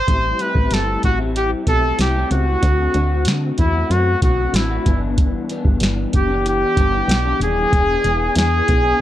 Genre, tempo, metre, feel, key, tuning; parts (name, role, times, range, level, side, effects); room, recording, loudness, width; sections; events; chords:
indie pop, bedroom pop; 94 BPM; 4/4; straight; A dorian; A4 = 436 Hz
clear trumpet; melody; 0.0-9.0 s; E4 to C5; -19 LUFS; equal; analog chorus
electric guitar through a small old amp; accompaniment; 0.1-9.0 s; G2 to G#4; -24 LUFS; left 4 dB; ensemble chorus, vibrato effect
solid FM bass; bass; 0.1-8.9 s; D#1 to D3; -20 LUFS; equal
soft vintage rhythm box; drums; 0.1-8.8 s; hi-hat, kick drum, snare drum; -19 LUFS; equal
light reverb; dark, warm production; -15 LUFS; side -13 dB against mid
0.0-9.0 A section
0.1 Am7; 2.6 D7; 4.9 G6; 7.7 E7